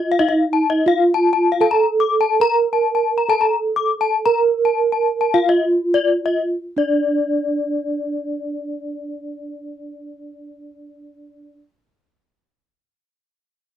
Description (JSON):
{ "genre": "gamelan", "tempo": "46-93 BPM", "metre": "4/4", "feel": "straight", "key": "D pelog", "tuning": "A4 = 440 Hz", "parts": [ { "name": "gamelan-type bronze metallophone", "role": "melody", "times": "0.0-11.5 s", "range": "D4 to Bb4", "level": "-19 LUFS", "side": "right 3 dB", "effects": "none" }, { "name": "gamelan-type bronze metallophone", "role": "arpeggios", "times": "0.0-11.6 s", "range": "D5 to D6", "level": "-20 LUFS", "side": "left 7 dB", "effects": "none" } ], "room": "light reverb", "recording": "dry, close 1970s-style studio recording", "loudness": "-16 LUFS", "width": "side -10 dB against mid", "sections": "0.0-6.6 A section; 6.6-11.8 B section", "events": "slowing down 0.0-6.6", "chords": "none" }